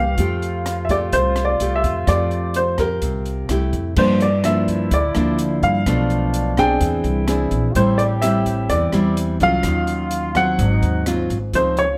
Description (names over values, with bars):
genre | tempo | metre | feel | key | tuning
bossa nova | 127 BPM | 4/4 | straight | F major | A4 = 440 Hz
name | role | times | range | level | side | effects
warm baby grand piano | melody | 0.0-12.0 s | Bb4 to G5 | -23 LUFS | equal | none
clear trombone | second line | 0.0-12.0 s | D4 to G4 | -32 LUFS | equal | none
nylon-string guitar | accompaniment | 0.0-12.0 s | G2 to Ab4 | -24 LUFS | equal | none
upright bass | bass | 0.0-12.0 s | Ab1 to G2 | -24 LUFS | equal | none
open jazz drum kit | drums | 0.2-11.9 s | crash cymbal, hi-hat, kick drum, rim click | -30 LUFS | equal | none
room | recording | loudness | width
light reverb | none | -19 LUFS | mono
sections
0.0-4.0 A section; 4.0-12.0 B section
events
none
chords
0.2 Fadd9; 4.0 Gm7; 5.9 Bm7b5; 6.8 E7alt; 7.8 Am7; 9.6 Ebm9; 10.6 Ab6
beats
| 0.18 0.65 1.13 1.60 | 2.07 2.55 3.02 3.49 | 3.97 4.44 4.91 5.39 | 5.86 6.33 6.81 7.28 | 7.75 8.23 8.70 9.17 | 9.65 10.12 10.59 11.06 | 11.54